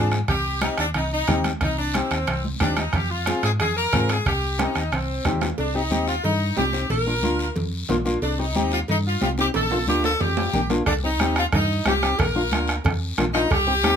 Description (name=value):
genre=latin, cumbia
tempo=182 BPM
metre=4/4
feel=straight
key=C minor, C dorian from 5.6 s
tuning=A4 = 445 Hz
part: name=edgy saxophone section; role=melody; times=0.0-14.0 s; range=C4 to Bb4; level=-24 LUFS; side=equal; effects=none
part: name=nylon-string guitar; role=accompaniment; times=0.0-14.0 s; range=Bb3 to Ab4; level=-25 LUFS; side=left 2 dB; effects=none
part: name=hollow-body short-scale fingered electric bass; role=bass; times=0.0-14.0 s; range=Bb1 to Ab2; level=-26 LUFS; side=equal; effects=none
part: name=bombo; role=percussion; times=0.1-5.6, 10.9-14.0 s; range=none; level=-26 LUFS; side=right 3 dB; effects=none
part: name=congas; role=percussion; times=0.1-14.0 s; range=none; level=-31 LUFS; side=equal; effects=none
part: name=guiro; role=percussion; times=0.1-14.0 s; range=none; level=-35 LUFS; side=left 5 dB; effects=none
part: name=timbales and cowbell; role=percussion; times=0.3-13.7 s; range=none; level=-32 LUFS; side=right 2 dB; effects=none
room=light reverb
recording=minimal, uncompressed stereo recording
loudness=-20 LUFS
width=side -8 dB against mid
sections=0.0-5.6 A section; 5.6-14.0 B section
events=drum fill 4.6-5.6, 9.5-10.9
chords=0.3 Cm; 2.9 Fm; 4.3 Cm; 6.9 Bb; 8.2 Cm; 9.5 Bb; 10.9 Cm; 12.2 Bb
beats=| 0.29 0.62 0.95 1.28 | 1.61 1.94 2.27 2.60 | 2.93 3.27 3.60 3.93 | 4.26 4.59 4.92 5.25 | 5.58 5.91 6.24 6.57 | 6.90 7.23 7.56 7.89 | 8.22 8.55 8.88 9.21 | 9.54 9.88 10.21 10.54 | 10.87 11.20 11.53 11.86 | 12.19 12.52 12.85 13.18 | 13.51 13.84